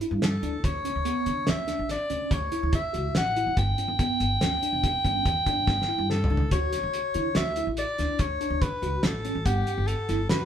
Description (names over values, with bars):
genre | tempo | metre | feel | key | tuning
progressive instrumental, band music in an uneven meter | 143 BPM | 7/4 | straight | unclear | A4 = 440 Hz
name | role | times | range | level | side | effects
tine electric piano | arpeggios | 0.0-10.4 s | B3 to F#5 | -32 LUFS | equal | medium stereo tremolo, digital delay
cloth-damped thuddy drum kit | drums | 0.0-10.4 s | hi-hat, kick drum, snare drum, toms | -28 LUFS | equal | none
upright bass | bass | 0.1-10.5 s | E1 to D3 | -30 LUFS | equal | none
warm soprano saxophone | melody | 0.2-10.5 s | G4 to G5 | -28 LUFS | left 1 dB | none
room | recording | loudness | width
wet studio reverb, RT60 0.8 s | band playing live in one room | -24 LUFS | side -9 dB against mid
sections
0.0-6.5 A section; 6.5-10.5 A section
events
drum fill 5.7-6.5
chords
0.0 Gsus2; 0.6 Dmaj7(no3); 3.6 G5; 6.5 Dmaj7; 9.5 Gsus2